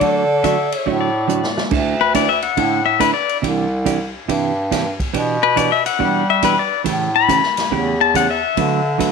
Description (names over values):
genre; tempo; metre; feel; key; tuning
country, western swing; 140 BPM; 4/4; swing 66% on 8ths; D major; A4 = 436 Hz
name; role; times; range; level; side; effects
clean lap steel guitar; melody; 0.0-1.2 s; D5; -19 LUFS; left 3 dB; none
clear fiddle; second line; 0.0-1.2 s; A4; -25 LUFS; right 14 dB; none
vintage hollow-body jazz guitar; accompaniment; 0.0-9.1 s; B2 to B4; -21 LUFS; right 12 dB; none
clear bass clarinet; bass; 0.0-9.1 s; C2 to G3; -21 LUFS; equal; none
swinging big-band drum kit; drums; 0.0-9.1 s; crash cymbal, hi-hat, kick drum, ride cymbal, snare drum; -26 LUFS; equal; none
pedal steel guitar; second line; 0.4-9.1 s; B4 to B5; -17 LUFS; left 9 dB; none
room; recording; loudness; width
wet spring reverb, RT60 1.6 s, small room ambience; 1960s-style stereo with parts hard left and right; -15 LUFS; side -5 dB against mid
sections
0.0-1.7 A section; 1.7-9.1 B section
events
drum fill 1.3-1.7; pedal steel guitar solo 1.7-9.1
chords
0.0 D; 1.7 Dsus2; 3.4 Cadd9; 5.1 G6/B; 6.9 A7; 8.6 D6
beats
| 0.00 0.43 0.86 1.29 | 1.72 2.14 2.57 3.00 | 3.43 3.86 4.29 4.71 | 5.14 5.57 6.00 6.43 | 6.86 7.28 7.71 8.14 | 8.57 9.00